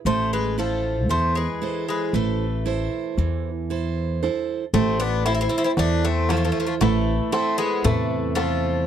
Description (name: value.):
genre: greek folk, Greek bouzouki band.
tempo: 116 BPM (eighths).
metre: 9/8.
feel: straight.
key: A harmonic minor.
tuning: A4 = 440 Hz.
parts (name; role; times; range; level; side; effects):
Greek bouzouki; melody; 0.1-8.9 s; A3 to C5; -27 LUFS; left 1 dB; none.
Greek bouzouki; second line; 0.1-8.8 s; E3 to C4; -28 LUFS; left 9 dB; none.
picked steel-string acoustic guitar; accompaniment; 0.1-8.9 s; C3 to C5; -26 LUFS; right 10 dB; none.
upright bass; bass; 0.1-8.9 s; A1 to E2; -25 LUFS; left 1 dB; none.
darbuka; percussion; 4.7-8.6 s; none; -27 LUFS; left 3 dB; none.
room: little or no reverb.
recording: dry, close 1970s-style studio recording.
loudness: -20 LUFS.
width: side -9 dB against mid.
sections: 0.0-4.7 A section; 4.7-8.9 B section.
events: none.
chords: 0.1 Am.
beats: | 0.06 0.58 1.10 1.62 2.14 2.66 3.18 3.70 4.22 | 4.74 5.26 5.78 6.29 6.81 7.33 7.85 8.37.